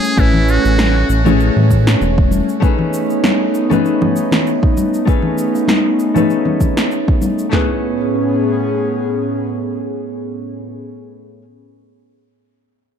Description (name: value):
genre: sunset chillout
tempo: 98 BPM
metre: 4/4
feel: swing 55% on 16ths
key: A lydian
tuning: A4 = 440 Hz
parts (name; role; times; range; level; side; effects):
- trumpet with metal mute; melody; 0.0-1.1 s; E4 to G#4; -22 LUFS; equal; ping-pong delay
- nylon-string guitar; accompaniment; 0.0-11.4 s; A3 to G#5; -20 LUFS; moving between left 7 dB and right 5 dB; auto-pan, low-pass filter, ping-pong delay
- airy breathy pad; sustained chords; 0.0-10.7 s; A2 to G#5; -19 LUFS; equal; chorus
- electronic shaker, snare drum and congas; drums; 0.0-7.5 s; none; -19 LUFS; right 2 dB; overdrive
- round analog bass; bass; 0.2-2.4 s; E1 to A2; -14 LUFS; equal; none
- deep house drum kit; drums; 0.2-7.7 s; handclaps, kick drum, snare drum, toms; -15 LUFS; equal; overdrive
- congas and bongos; percussion; 0.3-7.3 s; none; -23 LUFS; left 4 dB; none
room: light reverb, digital ambience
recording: dark, warm production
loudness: -13 LUFS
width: side -8 dB against mid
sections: 0.0-7.5 A section; 7.5-10.0 B section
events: none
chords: 0.0 Amaj9; 2.6 B13; 7.5 Amaj9